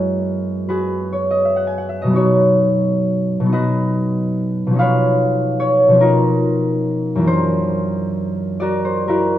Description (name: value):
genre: classical, solo harp piece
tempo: 40-49 BPM (dotted quarters)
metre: 6/8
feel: rubato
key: B lydian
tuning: A4 = 444 Hz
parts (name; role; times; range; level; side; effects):
- concert harp; solo; 0.0-9.4 s; F#2 to G#5; -15 LUFS; equal; none
room: wet recital hall reverb, RT60 1.7 s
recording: none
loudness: -15 LUFS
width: side -12 dB against mid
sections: 0.0-9.4 A section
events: none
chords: 0.0 F#9sus4; 2.1 Badd9; 4.8 C#13/B; 7.3 F#aug7